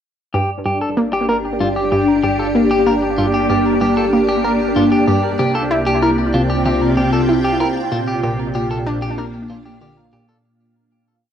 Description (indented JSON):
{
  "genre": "ambient, sequencer-driven space music",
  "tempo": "95 BPM",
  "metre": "4/4",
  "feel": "straight",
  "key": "G minor",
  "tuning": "A4 = 440 Hz",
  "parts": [
    { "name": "evolving wavetable pad", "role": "sustained chords", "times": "0.8-10.4 s", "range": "Bb2 to G5", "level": "-17 LUFS", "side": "equal", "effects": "ensemble chorus, built-in reverb, phaser, cassette tape" },
    { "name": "clean electric guitar", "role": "arpeggios", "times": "0.3-10.4 s", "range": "F4 to Bb4", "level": "-21 LUFS", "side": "left 1 dB", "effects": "auto-pan, low-pass filter, cassette tape, tape echo" },
    { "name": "analog pluck", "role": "riff", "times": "0.3-10.2 s", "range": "G2 to E4", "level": "-20 LUFS", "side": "equal", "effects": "chorus, cassette tape, tape echo" },
    { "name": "round analog bass", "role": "bass", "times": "0.3-10.4 s", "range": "G1 to C2", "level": "-30 LUFS", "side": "equal", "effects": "tube saturation" },
    { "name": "bubbling stepped-filter texture", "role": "texture", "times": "0.3-10.5 s", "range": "D4 to D5", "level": "-28 LUFS", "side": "equal", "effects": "chorus, built-in reverb, cassette tape" }
  ],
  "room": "wet studio reverb, RT60 0.6 s",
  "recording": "home recording on cassette",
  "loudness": "-14 LUFS",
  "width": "side -9 dB against mid",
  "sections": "0.3-10.4 A section",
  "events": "filter sweep on synth arpeggio sound 0.3-10.4; fade-out 7.1-10.4",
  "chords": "0.3 Gm; 5.4 Csus4; 7.9 Bb"
}